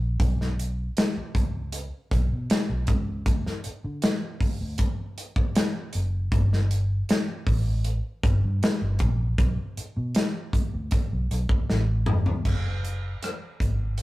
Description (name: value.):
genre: lush 1970s-style soul.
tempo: 78 BPM.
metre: 4/4.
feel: straight.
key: B minor.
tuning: A4 = 438 Hz.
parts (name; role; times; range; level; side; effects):
vintage muted fingered electric bass; bass; 0.0-14.0 s; E#1 to D3; -26 LUFS; equal; none.
modern studio drum kit; drums; 0.2-14.0 s; crash cymbal, hi-hat, kick drum, rim click, snare drum, toms; -25 LUFS; equal; none.
room: moderate stone room reverb, RT60 1.0 s.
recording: rough rehearsal-room recording.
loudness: -23 LUFS.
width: side -18 dB against mid.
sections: 0.0-12.5 A section; 12.5-14.0 B section.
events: drum fill 11.7-12.5.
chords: none.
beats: | 0.20 0.96 1.73 2.49 | 3.26 4.03 4.79 5.56 | 6.32 7.09 7.85 8.62 | 9.39 10.15 10.92 11.69 | 12.45 13.22 13.99.